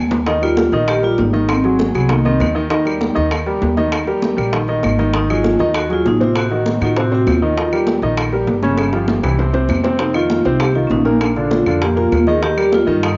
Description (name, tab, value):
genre	Afro-Cuban jazz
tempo	198 BPM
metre	4/4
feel	straight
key	unclear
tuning	A4 = 439 Hz
part	upright bass	bass	0.0-13.2 s	G1 to A2	-23 LUFS	equal	none
part	bongos	percussion	0.1-13.2 s	none	-28 LUFS	equal	none
part	congas	percussion	0.1-13.2 s	none	-25 LUFS	equal	none
part	vibraphone with soft mallets	melody	0.3-13.2 s	Bb3 to Ab4	-21 LUFS	equal	none
part	warm baby grand piano	accompaniment	0.3-13.1 s	Bb2 to Eb5	-21 LUFS	equal	none
part	claves	percussion	0.4-13.2 s	none	-33 LUFS	equal	none
room	light reverb, studio reverb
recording	nothing above 7.5 kHz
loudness	-16 LUFS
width	mono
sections	0.3-13.2 A section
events	drum fill 0.0, 8.8-10.0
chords	0.3 Eb; 1.5 Ab7; 2.7 Eb; 5.1 Ab7; 6.4 Adim7; 7.6 Eb7; 8.8 Dbmaj7#11/G; 9.4 Csus4; 10.0 F5; 11.2 Bb; 12.4 Eb